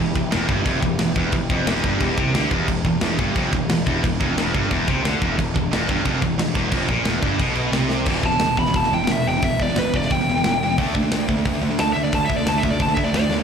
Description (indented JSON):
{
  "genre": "heavy metal",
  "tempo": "178 BPM",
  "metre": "4/4",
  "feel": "straight",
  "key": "E phrygian, E minor from 8.1 s",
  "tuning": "A4 = 440 Hz",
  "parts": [
    { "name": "phased analog pad", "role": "sustained chords", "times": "0.0-8.0 s", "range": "E3 to G4", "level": "-33 LUFS", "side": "left 2 dB", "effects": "phaser, chorus" },
    { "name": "heavy high-gain guitar", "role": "riff", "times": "0.0-13.4 s", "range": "E2 to D4", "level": "-23 LUFS", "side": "right 10 dB", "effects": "distortion, slapback echo" },
    { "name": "high-gain distorted guitar", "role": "riff", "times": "0.0-13.4 s", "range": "E2 to D4", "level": "-26 LUFS", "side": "left 14 dB", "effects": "distortion, slapback echo" },
    { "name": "fuzz picked electric bass", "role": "bass", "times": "0.0-13.4 s", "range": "E1 to D#2", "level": "-25 LUFS", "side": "left 2 dB", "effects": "overdrive" },
    { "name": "tight metal drum kit", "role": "drums", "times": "0.2-13.4 s", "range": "crash cymbal, hi-hat, kick drum, snare drum", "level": "-24 LUFS", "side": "left 1 dB", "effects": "none" },
    { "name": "high-gain lead guitar", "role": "melody", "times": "8.3-13.3 s", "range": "B4 to B5", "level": "-22 LUFS", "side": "left 1 dB", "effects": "distortion, slapback echo, digital delay" }
  ],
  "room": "light reverb, studio reverb",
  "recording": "live gig heard through the venue's PA, club reverb",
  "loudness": "-18 LUFS",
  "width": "side -7 dB against mid",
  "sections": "0.0-8.1 A section; 8.1-13.4 B section",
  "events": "drum fill 7.9; lead electric guitar solo 8.1-13.4",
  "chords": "0.0 Em; 10.8 D5",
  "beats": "0.32 0.66 0.99 | 1.33 1.67 2.00 2.34 | 2.68 3.02 3.35 3.69 | 4.03 4.37 4.70 5.04 | 5.38 5.71 6.05 6.39 | 6.73 7.07 7.40 7.74 | 8.08 8.42 8.75 9.09 | 9.43 9.77 10.11 10.44 | 10.78 11.12 11.46 11.79 | 12.13 12.47 12.80 13.14"
}